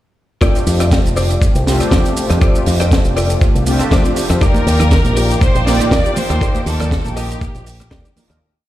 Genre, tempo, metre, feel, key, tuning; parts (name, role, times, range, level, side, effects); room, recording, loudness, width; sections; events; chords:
nu-disco, nu disco; 120 BPM; 4/4; swing 54% on 16ths; F mixolydian; A4 = 440 Hz
mellow synth brass; accompaniment; 0.4-8.4 s; A3 to D5; -20 LUFS; equal; chorus, cassette tape, tape echo
direct-recorded clean electric guitar; riff; 0.4-8.3 s; Eb4 to Eb5; -23 LUFS; left 2 dB; ensemble chorus, tape echo
electronic kick drum; drums; 0.4-8.0 s; -14 LUFS; equal
tight funk drum kit; drums; 0.4-8.4 s; hi-hat, rim click, shaker, snare drum; -22 LUFS; right 1 dB
fingered electric bass with an envelope filter; bass; 0.7-8.4 s; F1 to F2; -16 LUFS; equal
clear studio violin section; melody; 4.4-8.1 s; G4 to D5; -22 LUFS; right 1 dB
muted studio string section; sustained chords; 4.4-8.4 s; Bb3 to D6; -27 LUFS; left 2 dB; sidechain pumping
congas; percussion; 4.5-8.3 s; -24 LUFS; right 2 dB
little or no reverb; played on a big sound system in a bare room, stone room reverb; -12 LUFS; side -14 dB against mid
0.4-8.4 drop
drop 0.4-8.4; fade-out 5.7-8.4
0.4 F6; 4.4 Ebmaj7